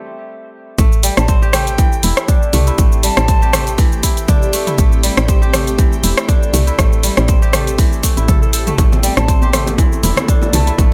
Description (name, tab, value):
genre	afro house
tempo	120 BPM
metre	4/4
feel	swing 55% on 16ths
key	A minor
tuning	A4 = 440 Hz
part	kora	arpeggios	0.0-10.9 s	E3 to A4	-25 LUFS	equal	sidechain pumping, dub echo
part	ethereal airy pad	sustained chords	2.4-10.9 s	A3 to A4	-29 LUFS	equal	ensemble chorus, built-in reverb, phaser, sidechain pumping
part	woody FM bass	bass	0.8-10.9 s	E1 to C2	-19 LUFS	equal	sidechain pumping
part	electronic kick drum	drums	0.8-10.9 s	none	-15 LUFS	equal	small room reverb
part	house drum kit	drums	0.8-10.9 s	cabasa, hi-hat, rim click, toms	-21 LUFS	equal	low-pass filter on perc, small room reverb, low-pass filter on hats, low-pass filter on snare, low-pass filter on toms
part	bright reedy bansuri	melody	1.0-3.7, 9.0-10.7 s	G5 to C6	-26 LUFS	equal	dub echo
part	congas	percussion	8.8-10.9 s	none	-26 LUFS	equal	none
part	bongos	percussion	8.9-10.8 s	none	-28 LUFS	equal	none
room	little or no reverb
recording	none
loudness	-14 LUFS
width	mono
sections	0.8-10.9 A section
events	break 0.0-0.8; drop 0.8-10.9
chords	0.0 Am7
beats	0.28 | 0.79 1.28 1.78 2.29 | 2.79 3.29 3.79 4.29 | 4.79 5.29 5.79 6.29 | 6.79 7.29 7.79 8.29 | 8.79 9.29 9.79 10.29 | 10.79